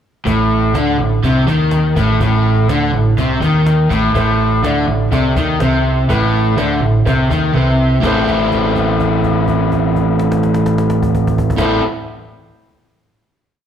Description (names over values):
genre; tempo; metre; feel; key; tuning
classic rock; 124 BPM; 4/4; straight; A minor; A4 = 439 Hz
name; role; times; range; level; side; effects
overdriven semi-hollow guitar; riff; 0.3-11.8 s; A2 to A4; -15 LUFS; right 3 dB; none
raw garage guitar; riff; 0.3-11.8 s; A2 to E4; -17 LUFS; left 6 dB; overdrive
growling fingered electric bass; bass; 0.3-11.8 s; A1 to D#2; -21 LUFS; left 1 dB; overdrive
cajon; drums; 0.3-11.7 s; none; -25 LUFS; left 1 dB; none
warm upright piano; accompaniment; 4.1-11.8 s; E4 to D5; -25 LUFS; right 1 dB; none
room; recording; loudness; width
wet large studio reverb, RT60 1.4 s; band playing live in one room; -12 LUFS; side -9 dB against mid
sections
0.3-8.0 riff; 8.0-11.9 final chord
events
kick and snare drop out 7.5-8.0; held note 8.0-11.6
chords
0.3 Am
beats
| 0.26 0.74 1.23 1.71 | 2.20 2.69 3.17 3.66 | 4.15 4.63 5.12 5.61 | 6.09 6.58 7.06 7.55 | 8.03 8.51 8.99 9.48 | 9.96 10.44 10.92 11.40